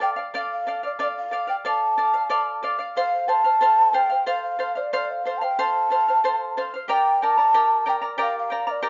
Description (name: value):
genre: andean folk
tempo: 92 BPM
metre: 3/4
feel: straight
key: unclear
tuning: A4 = 440 Hz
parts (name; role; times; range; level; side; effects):
- mellow hollow large quena; melody; 0.0-8.9 s; D5 to A5; -23 LUFS; equal; none
- charango; accompaniment; 0.0-8.9 s; G4 to Bb5; -28 LUFS; equal; none
room: moderate studio reverb, RT60 0.8 s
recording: band playing live in one room, nothing above 7.5 kHz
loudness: -22 LUFS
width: mono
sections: 0.0-8.9 A section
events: none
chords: 0.0 Dm; 3.0 F; 6.9 Gm